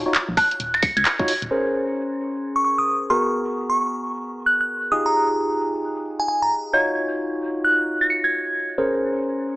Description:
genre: UK garage, two-step garage.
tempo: 132 BPM.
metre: 4/4.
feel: swing 62% on 16ths.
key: Bb minor.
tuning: A4 = 440 Hz.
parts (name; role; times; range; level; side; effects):
bright tine electric piano; stabs; 0.0-9.6 s; Cb4 to Db5; -24 LUFS; equal; phaser, low-pass filter, dub echo.
organ-like FM bass; bass; 0.0-1.5 s; Eb1 to Db2; -31 LUFS; equal; none.
garage drum kit; drums; 0.1-9.3 s; finger snaps, handclaps, hi-hat, woodblock; -23 LUFS; equal; low-pass filter on hats, low-pass filter on snare, low-pass filter on perc.
glassy synth bell; melody; 0.4-8.7 s; Ab5 to Db7; -21 LUFS; equal; chorus, dub echo.
electronic kick drum; drums; 0.4-1.3 s; none; -24 LUFS; equal; none.
room: moderate plate reverb, RT60 1.9 s.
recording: small speaker sound.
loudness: -19 LUFS.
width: side -20 dB against mid.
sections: 0.0-1.5 A section; 1.5-9.6 B section.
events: band accent 1.1.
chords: 0.0 Ebm9; 1.5 Bbm9; 3.1 Abm9; 4.9 Fm9; 6.7 Ebm9; 8.8 Bbm9.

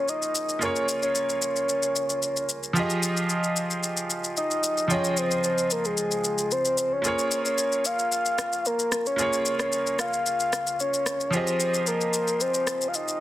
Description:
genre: amapiano.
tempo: 112 BPM.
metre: 4/4.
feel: straight.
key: Bb minor.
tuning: A4 = 440 Hz.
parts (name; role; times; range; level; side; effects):
soft octave-layered synth lead; melody; 0.0-13.2 s; Ab4 to F5; -25 LUFS; equal; chorus, digital delay.
bright concert grand piano; accompaniment; 0.0-13.2 s; F3 to G5; -29 LUFS; right 1 dB; none.
electronic shaker and rim click; drums; 0.1-13.2 s; none; -29 LUFS; left 2 dB; soft clipping on snare.
room: light reverb.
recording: dense, heavily limited modern master.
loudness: -23 LUFS.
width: side -14 dB against mid.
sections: 0.0-13.2 A section.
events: none.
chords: 0.0 Bbm7; 2.8 Fm9; 7.0 Bbm7; 11.3 Fm9.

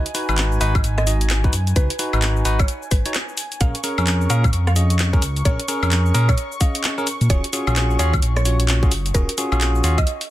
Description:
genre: UK garage, two-step garage.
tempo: 130 BPM.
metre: 4/4.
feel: swing 62% on 16ths.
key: Eb minor.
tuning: A4 = 443 Hz.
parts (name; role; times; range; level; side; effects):
mallet-like synth pluck; melody; 0.0-10.1 s; Bb4 to F5; -30 LUFS; right 2 dB; chorus, dub echo.
warm analog pad; sustained chords; 0.0-10.3 s; Ab5 to Db6; -34 LUFS; left 1 dB; chorus, sidechain pumping.
bell-like tine electric piano; stabs; 0.0-10.0 s; Db4 to Eb5; -25 LUFS; equal; ping-pong delay.
dark detuned saw bass; bass; 0.0-10.0 s; Eb1 to Bb2; -19 LUFS; equal; tube saturation.
garage drum kit; drums; 0.1-10.3 s; cabasa, handclaps, hi-hat, rim click, woodblock; -24 LUFS; left 1 dB; soft clipping on snare.
electronic kick drum; drums; 0.8-10.1 s; none; -18 LUFS; equal; none.
room: little or no reverb.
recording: dense, heavily limited modern master.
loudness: -17 LUFS.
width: side -14 dB against mid.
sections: 0.0-10.3 A section.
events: none.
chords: 0.0 Ab7(no3); 3.4 Bbm7; 7.3 Ebm11.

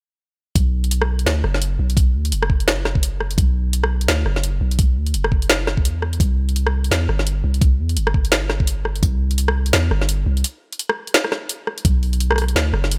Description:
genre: half-time drum and bass.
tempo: 170 BPM.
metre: 4/4.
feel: swing 59% on 16ths, half-time.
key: B phrygian.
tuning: A4 = 440 Hz.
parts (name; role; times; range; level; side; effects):
long sustained 808-style bass; bass; 0.6-13.0 s; F#1 to E2; -22 LUFS; equal; none.
drum and bass drum kit; drums; 0.6-13.0 s; hi-hat, rim click, snare drum; -23 LUFS; equal; overdrive.
electronic kick drum; drums; 0.6-9.1, 11.8-11.9 s; none; -20 LUFS; equal; none.
room: digital ambience.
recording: none.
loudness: -19 LUFS.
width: mono.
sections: 0.6-13.0 A section.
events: break 10.4-11.9.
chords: none.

